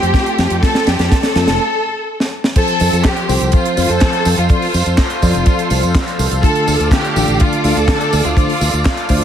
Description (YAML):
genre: italo disco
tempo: 124 BPM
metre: 4/4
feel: straight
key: F major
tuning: A4 = 440 Hz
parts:
  - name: rich studio violin section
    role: melody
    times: 0.0-9.2 s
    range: F4 to A4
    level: -18 LUFS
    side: left 1 dB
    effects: ping-pong delay
  - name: lush unison pad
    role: sustained chords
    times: 0.0-9.2 s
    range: A4 to D6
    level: -23 LUFS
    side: right 1 dB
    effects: chorus, phaser
  - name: mellow tine electric piano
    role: stabs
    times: 0.0-9.2 s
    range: D3 to D5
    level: -20 LUFS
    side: left 1 dB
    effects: medium stereo tremolo
  - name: fingered electric bass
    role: bass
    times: 0.0-9.2 s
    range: F1 to F2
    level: -17 LUFS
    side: equal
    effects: none
  - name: tight funk drum kit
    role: drums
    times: 0.0-9.2 s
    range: crash cymbal, handclaps, hi-hat, snare drum, tambourine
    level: -20 LUFS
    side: right 1 dB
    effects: studio reverb
  - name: kick drum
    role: drums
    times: 0.1-9.2 s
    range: none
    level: -14 LUFS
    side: equal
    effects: studio reverb
room: light reverb, small room ambience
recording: vinyl crackle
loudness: -12 LUFS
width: side -9 dB against mid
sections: 0.0-2.6 A section; 2.6-9.2 B section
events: drum fill 0.0-1.6, 2.2-2.6; filter sweep on tine electric piano 0.0-2.6; break 1.6-2.6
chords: 0.0 Fadd9; 2.6 F; 6.4 Dm